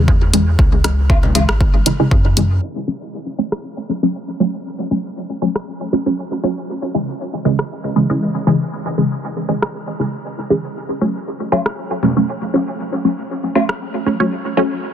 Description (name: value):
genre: dub techno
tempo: 118 BPM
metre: 4/4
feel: swing 54% on 16ths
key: F# minor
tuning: A4 = 440 Hz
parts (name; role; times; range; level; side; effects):
- filtered dub chord stab; stabs; 0.0-14.7 s; C#3 to C#4; -18 LUFS; equal; phaser, sidechain pumping, dub echo
- soft dub sub bass; bass; 0.0-2.6 s; G#1 to F#2; -16 LUFS; equal; tube saturation, sidechain pumping
- electronic kick drum; drums; 0.1-2.2 s; none; -15 LUFS; equal; none
- deep house drum kit; drums; 0.3-13.8 s; hi-hat, rim click; -25 LUFS; equal; low-pass filter on hats, soft clipping on snare, low-pass filter on snare, dub echo
- woodblock and congas; percussion; 1.1-1.5, 11.5-13.7 s; none; -25 LUFS; left 2 dB; sidechain pumping on perc, dub echo
room: light reverb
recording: dense, heavily limited modern master, low-pass filter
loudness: -16 LUFS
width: side -9 dB against mid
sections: 0.0-2.6 A section; 2.6-14.9 B section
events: filter sweep on synth stab 0.0-2.6, 2.6-14.9; filter sweep on drum 2.6-14.9; filter sweep 2.6-14.9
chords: 0.0 C#m; 2.6 F#m; 6.7 C#m; 10.8 F#m